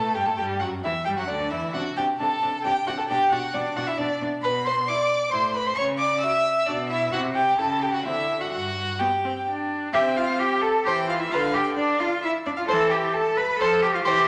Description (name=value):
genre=quick classical-period movement for string quartet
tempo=132 BPM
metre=3/4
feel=rubato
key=G major, C major from 9.9 s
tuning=A4 = 441 Hz
part: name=warm violin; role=melody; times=0.0-14.1 s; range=D5 to E6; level=-30 LUFS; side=equal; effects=none
part: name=warm violin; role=second line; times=0.0-14.3 s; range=D4 to E5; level=-28 LUFS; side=equal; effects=none
part: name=clear viola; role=accompaniment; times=0.0-14.3 s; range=D3 to F#4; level=-34 LUFS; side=equal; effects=none
part: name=warm cello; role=bass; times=0.0-14.3 s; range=D2 to B4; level=-29 LUFS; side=equal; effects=none
room=wet recital hall reverb, RT60 1.3 s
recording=nothing above 10.6 kHz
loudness=-24 LUFS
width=mono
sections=0.0-9.9 A section; 9.9-14.3 B section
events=none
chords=0.4 Em9; 1.7 D5/C; 3.1 Bm; 4.4 N.C.; 5.3 Am; 5.8 N.C.; 6.7 Bm; 7.1 C; 7.6 A7/C#; 8.1 D9; 8.5 G5; 9.9 C; 10.8 C/E; 11.3 G7(no3)/D (rootless); 12.7 C/E; 13.6 F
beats=| 0.38 0.83 1.29 | 1.74 2.20 2.65 | 3.09 3.54 3.99 | 4.44 4.88 5.33 | 5.78 6.23 6.67 | 7.13 7.58 8.05 | 8.52 8.99 9.46 | 9.93 10.39 10.85 | 11.31 11.77 12.23 | 12.68 13.14 13.59 | 14.04